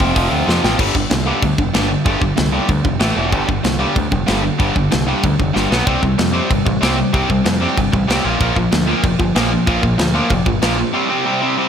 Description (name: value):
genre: punk rock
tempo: 189 BPM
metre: 4/4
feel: straight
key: unclear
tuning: A4 = 439 Hz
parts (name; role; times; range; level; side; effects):
- cranked stack guitar; riff; 0.0-11.7 s; E2 to C4; -16 LUFS; equal; overdrive, slapback echo
- growling picked electric bass; bass; 0.0-10.8 s; E1 to F2; -21 LUFS; equal; overdrive
- tight metal drum kit; drums; 0.0-10.7 s; crash cymbal, hi-hat, kick drum, snare drum; -19 LUFS; equal; none
room: moderate lush hall reverb, RT60 1.7 s, small room ambience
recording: big arena sound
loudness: -14 LUFS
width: side -8 dB against mid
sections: 0.8-10.9 A section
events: drum fill 0.5-0.8, 5.6-5.9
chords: 0.0 F; 0.8 G5; 3.0 A5; 3.2 E5; 3.3 G5; 5.7 B5; 5.9 C5; 8.2 Bb; 10.9 C5